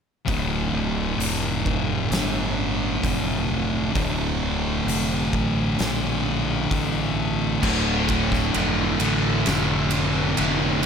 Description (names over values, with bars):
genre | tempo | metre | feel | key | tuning
stoner and doom metal | 65 BPM | 4/4 | straight | D minor | A4 = 441 Hz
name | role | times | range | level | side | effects
thick fuzz guitar | riff | 0.3-10.9 s | D2 to D3 | -25 LUFS | left 10 dB | distortion
thick fuzz guitar | riff | 0.3-10.9 s | D2 to D3 | -26 LUFS | right 10 dB | distortion
fuzz fingered electric bass | bass | 0.3-10.9 s | D1 to Bb1 | -27 LUFS | equal | overdrive
oversized low-tuned drum kit | drums | 0.3-10.9 s | crash cymbal, hi-hat, kick drum, ride cymbal, snare drum | -28 LUFS | equal | none
biting overdriven guitar | riff | 7.6-10.9 s | D2 to D3 | -26 LUFS | equal | none
room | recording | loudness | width
little or no reverb | none | -20 LUFS | side -7 dB against mid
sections
0.3-7.6 A section; 7.6-10.9 B section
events
none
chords
0.3 Dm